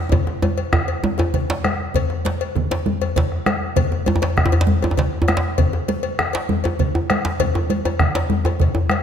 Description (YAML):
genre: west african traditional, West African drum ensemble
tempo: 132 BPM (dotted quarters)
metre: 12/8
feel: straight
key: none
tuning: none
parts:
  - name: bombo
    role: percussion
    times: 0.1-9.0 s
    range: none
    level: -22 LUFS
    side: right 1 dB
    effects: none
  - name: congas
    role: percussion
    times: 0.1-9.0 s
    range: none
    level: -26 LUFS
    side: right 4 dB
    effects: none
  - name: cowbell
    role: percussion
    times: 0.1-9.0 s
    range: none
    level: -26 LUFS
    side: left 7 dB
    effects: none
  - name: djembe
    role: percussion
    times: 0.1-9.0 s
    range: none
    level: -26 LUFS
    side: left 5 dB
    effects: none
  - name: djembe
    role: percussion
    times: 0.1-8.9 s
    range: none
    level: -22 LUFS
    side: right 1 dB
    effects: none
room: wet concert hall reverb, RT60 1.7 s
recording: none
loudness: -17 LUFS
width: side -8 dB against mid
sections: 0.0-1.9 A section; 1.9-9.0 B section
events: drum fill 0.1-1.9, 8.6-9.0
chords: none